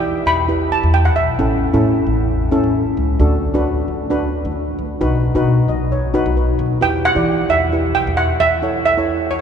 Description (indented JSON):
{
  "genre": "calypso",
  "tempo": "133 BPM",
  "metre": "4/4",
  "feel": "straight",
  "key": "unclear",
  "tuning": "A4 = 439 Hz",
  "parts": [
    { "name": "steel pan", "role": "melody", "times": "0.0-2.0, 6.8-9.4 s", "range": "C#5 to B5", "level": "-18 LUFS", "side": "right 2 dB", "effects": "none" },
    { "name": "steel pan", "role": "accompaniment", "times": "0.0-9.4 s", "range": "C#4 to D#5", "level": "-19 LUFS", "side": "equal", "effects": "none" },
    { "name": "upright bass", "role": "bass", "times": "0.0-8.6 s", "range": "A1 to E3", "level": "-19 LUFS", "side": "equal", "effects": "none" }
  ],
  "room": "wet cathedral reverb, RT60 7.0 s",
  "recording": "recorded in a church or concert hall, nothing above 10.4 kHz",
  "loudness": "-14 LUFS",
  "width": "side -7 dB against mid",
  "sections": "0.0-9.4 A section",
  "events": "steel pan fill 5.5-6.8",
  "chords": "0.0 Em; 1.4 A; 3.2 D; 5.0 B; 6.8 Em; 8.6 A"
}